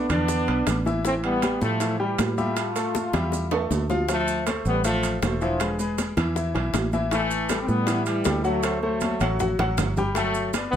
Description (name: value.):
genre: latin, salsa.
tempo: 158 BPM.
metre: 4/4.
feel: straight.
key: A minor.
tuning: A4 = 444 Hz.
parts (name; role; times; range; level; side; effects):
bright trombone section; melody; 0.0-10.8 s; D3 to F4; -26 LUFS; equal; none.
bright upright piano; accompaniment; 0.0-10.8 s; D3 to B5; -28 LUFS; left 2 dB; none.
fingered electric bass; bass; 0.0-10.8 s; E1 to A2; -27 LUFS; right 1 dB; none.
congas; percussion; 0.1-10.8 s; none; -32 LUFS; left 1 dB; none.
maracas; percussion; 0.1-10.8 s; none; -39 LUFS; right 7 dB; none.
timbales; percussion; 0.1-10.7 s; none; -31 LUFS; right 7 dB; none.
bongos; percussion; 0.3-10.7 s; none; -33 LUFS; left 7 dB; none.
room: moderate studio reverb, RT60 0.7 s.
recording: none.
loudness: -22 LUFS.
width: side -9 dB against mid.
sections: 0.0-4.1 A section; 4.1-10.8 B section.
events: drum fill 2.9-4.1, 9.0-10.2.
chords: 0.3 E5; 1.0 A5; 4.1 Dm7; 5.6 E; 7.1 Asus2; 8.6 D7; 10.2 Gmaj9.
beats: 0.29 0.67 | 1.05 1.43 1.81 2.19 | 2.57 2.95 3.33 3.71 | 4.09 4.47 4.84 5.22 | 5.60 5.98 6.36 6.74 | 7.12 7.50 7.88 8.26 | 8.64 9.02 9.40 9.78 | 10.16 10.54.